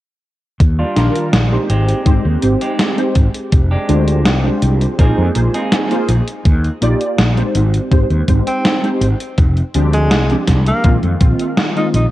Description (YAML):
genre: vaporwave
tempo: 82 BPM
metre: 4/4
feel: straight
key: unclear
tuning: A4 = 440 Hz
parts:
  - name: lush unison pad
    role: sustained chords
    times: 1.3-6.4 s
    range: Eb3 to D5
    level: -26 LUFS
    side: equal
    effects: none
  - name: clean electric guitar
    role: riff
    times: 0.6-6.0 s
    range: G3 to Ab4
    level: -24 LUFS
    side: right 2 dB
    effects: wide subtle chorus, low-pass filter, tape echo
  - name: fretless electric bass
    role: bass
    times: 0.6-12.1 s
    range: F1 to F2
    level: -14 LUFS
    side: equal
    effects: none
  - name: electronic kick drum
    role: drums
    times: 0.6-11.4 s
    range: none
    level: -12 LUFS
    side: equal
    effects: none
  - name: gated 80s digital drum machine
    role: drums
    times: 0.6-12.1 s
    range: hi-hat, snare drum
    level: -18 LUFS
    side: equal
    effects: gated reverb, gated reverb snare
  - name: warbly lo-fi synth keys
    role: accompaniment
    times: 1.0-12.0 s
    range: Eb3 to D5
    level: -19 LUFS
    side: equal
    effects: ensemble chorus, tape echo
  - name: breathy alto saxophone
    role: melody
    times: 8.5-12.1 s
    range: Ab3 to Eb4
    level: -20 LUFS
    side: equal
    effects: tape echo
room: light reverb, digital ambience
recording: cassette tape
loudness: -12 LUFS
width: side -15 dB against mid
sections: 0.6-6.5 A section; 6.5-12.1 B section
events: break 5.7-6.5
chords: 0.6 Ebmaj9; 1.7 Abmaj7; 3.5 Fm69; 5.0 Bb9sus4; 6.5 Ebmaj9; 7.6 Abmaj7; 9.4 Fm69; 10.8 Bb9sus4